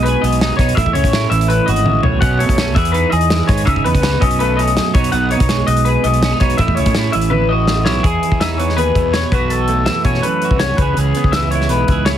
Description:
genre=math rock and midwest emo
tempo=164 BPM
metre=4/4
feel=straight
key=A lydian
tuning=A4 = 442 Hz
part: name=twelve-string electric guitar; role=accompaniment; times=0.0-12.2 s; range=F#2 to B4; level=-19 LUFS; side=right 9 dB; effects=none
part: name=electric guitar through a small old amp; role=arpeggios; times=0.0-12.2 s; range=G#4 to F#5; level=-18 LUFS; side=left 5 dB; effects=lush chorus, analog delay
part: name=fuzz fingered electric bass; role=bass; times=0.0-12.2 s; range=G#1 to B2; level=-18 LUFS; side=equal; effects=overdrive
part: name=loose indie drum kit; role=drums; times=0.1-12.1 s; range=hi-hat, kick drum, snare drum, toms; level=-18 LUFS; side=equal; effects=none
room=little or no reverb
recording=heavily compressed radio sound, multiband compression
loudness=-12 LUFS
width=side -10 dB against mid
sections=0.0-8.1 A section; 8.1-12.2 B section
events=drum fill 1.9-2.2, 7.3-8.1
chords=0.0 G#m/B; 0.8 Amaj9; 2.2 Bsus2; 2.8 Emaj7; 3.7 C#m9; 4.2 B9; 5.0 G#m/B; 6.6 Aadd9; 8.1 Emaj7; 9.3 B9sus4; 10.8 C#m7

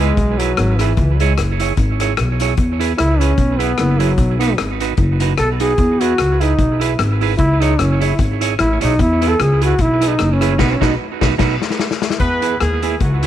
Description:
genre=ska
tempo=150 BPM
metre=4/4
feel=swing 56% on 8ths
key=E major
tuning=A4 = 439 Hz
part: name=mellow trombone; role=melody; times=0.0-10.9 s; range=E3 to A4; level=-18 LUFS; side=equal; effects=none
part: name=clean electric guitar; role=accompaniment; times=0.0-13.3 s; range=D#4 to C#5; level=-22 LUFS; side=right 14 dB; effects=tape echo
part: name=upright bass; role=bass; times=0.0-13.3 s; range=F#1 to E2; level=-17 LUFS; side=equal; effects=none
part: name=vintage drum kit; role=drums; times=0.2-13.3 s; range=crash cymbal, hi-hat, kick drum, rim click, snare drum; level=-20 LUFS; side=left 3 dB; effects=none
part: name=mellow horn section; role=melody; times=12.2-13.3 s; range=F#3 to B4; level=-20 LUFS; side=equal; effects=none
room=light reverb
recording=1960s-style stereo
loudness=-13 LUFS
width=side -11 dB against mid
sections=0.0-12.2 A section; 12.2-13.3 B section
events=trombone solo 0.0-12.2; band accent 10.6-12.2; drum fill 11.4-12.2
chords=0.0 E; 1.0 C#m; 4.2 B; 5.8 E; 7.4 C#m; 9.0 E; 10.6 B; 12.2 E

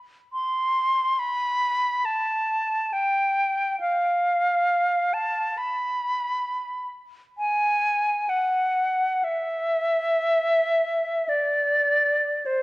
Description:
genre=classical, free, expressive piece for unaccompanied flute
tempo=free time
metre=none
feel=none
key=A minor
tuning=A4 = 441 Hz
part: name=silver concert flute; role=solo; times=0.3-12.6 s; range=C5 to C6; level=-21 LUFS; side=equal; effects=none
room=moderate recital hall reverb, RT60 1.8 s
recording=worn, warbling old tape, cassette tape, warbly pitch drift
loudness=-21 LUFS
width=side -20 dB against mid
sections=0.0-12.6 A section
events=none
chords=none

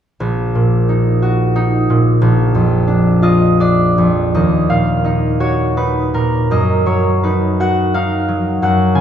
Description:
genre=classical, solo harp piece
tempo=51-62 BPM (dotted quarters)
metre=6/8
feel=rubato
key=Eb minor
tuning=A4 = 440 Hz
part: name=concert harp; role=solo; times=0.2-9.0 s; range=Bb1 to Ab5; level=-12 LUFS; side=equal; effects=none
room=wet recital hall reverb, RT60 1.8 s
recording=recorded in a church or concert hall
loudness=-12 LUFS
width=side -9 dB against mid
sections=0.2-4.3 A section; 4.3-9.0 B section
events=none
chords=0.2 Ebm/Bb; 2.2 Bb; 4.3 Ebm; 6.5 Ebm/Gb

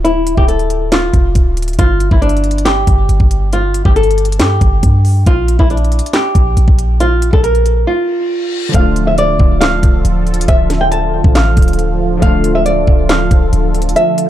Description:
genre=hip hop, trap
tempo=138 BPM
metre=4/4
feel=half-time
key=D minor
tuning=A4 = 440 Hz
part: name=flamenco guitar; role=melody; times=0.0-14.3 s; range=D4 to A5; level=-16 LUFS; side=equal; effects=low-pass filter, digital delay
part: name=clean 808-style bass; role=bass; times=0.0-13.9 s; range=C1 to G2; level=-14 LUFS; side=equal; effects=none
part: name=trap drum kit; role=drums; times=0.0-14.3 s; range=handclaps, hi-hat, kick drum, snare drum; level=-12 LUFS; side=equal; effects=none
part: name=reverse cymbal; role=sound effects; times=8.1-8.7 s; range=none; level=-26 LUFS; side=left 8 dB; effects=none
part: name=glassy digital keys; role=accompaniment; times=8.7-14.3 s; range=D3 to F4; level=-20 LUFS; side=left 1 dB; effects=chorus, low-pass filter
part: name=sweeping resonant pad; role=sustained chords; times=8.7-14.3 s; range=D3 to A4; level=-19 LUFS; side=right 2 dB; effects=chorus
room=little or no reverb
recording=dark, warm production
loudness=-10 LUFS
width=side -12 dB against mid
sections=0.0-8.7 A section; 8.7-14.3 B section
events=break 7.9-8.7; reverse cymbal 8.1-8.7; kick muted 14.0-14.3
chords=0.0 Dm; 1.8 N.C.; 5.3 Bb5; 8.7 Dm

